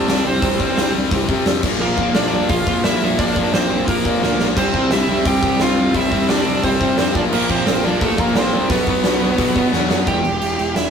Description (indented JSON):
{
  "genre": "punk rock",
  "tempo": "174 BPM",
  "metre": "4/4",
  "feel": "straight",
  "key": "unclear",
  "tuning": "A4 = 443 Hz",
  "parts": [
    { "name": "smooth overdriven lead guitar", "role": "melody", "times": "0.0-10.9 s", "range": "A3 to G5", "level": "-21 LUFS", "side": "right 3 dB", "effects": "none" },
    { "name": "cranked stack guitar", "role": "riff", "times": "0.0-10.2 s", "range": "E2 to C4", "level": "-21 LUFS", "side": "left 5 dB", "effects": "overdrive" },
    { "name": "thick fuzz guitar", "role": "riff", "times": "0.0-10.9 s", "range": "E2 to C4", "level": "-27 LUFS", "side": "right 1 dB", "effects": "none" },
    { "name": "fuzz picked electric bass", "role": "bass", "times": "0.0-10.9 s", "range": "E1 to C3", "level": "-25 LUFS", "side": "equal", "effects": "overdrive" },
    { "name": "big rock drum kit", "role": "drums", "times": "0.1-10.8 s", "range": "crash cymbal, hi-hat, kick drum, snare drum", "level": "-20 LUFS", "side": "equal", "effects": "none" },
    { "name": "distorted electric guitar", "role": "riff", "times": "4.6-10.2 s", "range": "E2 to C4", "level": "-25 LUFS", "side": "right 5 dB", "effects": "distortion" }
  ],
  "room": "light reverb",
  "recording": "rough rehearsal-room recording",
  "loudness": "-15 LUFS",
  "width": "side -7 dB against mid",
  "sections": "0.0-10.1 A section",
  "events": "drum fill 4.2-4.6, 9.7-10.1",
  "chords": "0.0 C5; 1.6 Bb; 4.6 C; 7.2 Bb; 8.7 B5; 10.1 Em"
}